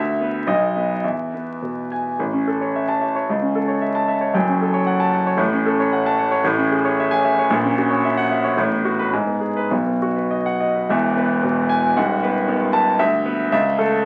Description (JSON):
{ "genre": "classical, virtuoso piano study", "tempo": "100-117 BPM", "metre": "2/4", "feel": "rubato", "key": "A major, E major from 6.4 s", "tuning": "A4 = 440 Hz", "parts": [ { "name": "warm grand piano", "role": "solo", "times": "0.0-14.1 s", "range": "D#1 to A5", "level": "-20 LUFS", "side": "equal", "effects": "none" } ], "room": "light reverb", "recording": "very old 78 rpm record, vinyl crackle", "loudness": "-20 LUFS", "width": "mono", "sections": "0.0-2.2 A section; 2.2-10.9 B section; 10.9-14.1 A section", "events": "none", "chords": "0.5 B; 1.0 E; 2.2 A; 3.3 A/C#; 4.3 F#m; 5.4 F#m/A; 6.4 Amaj7; 7.5 F#7/A#; 8.6 B5/A; 9.1 G#m; 9.7 B; 10.9 E; 12.0 B7/D#; 13.0 E5/D; 13.5 A/C#" }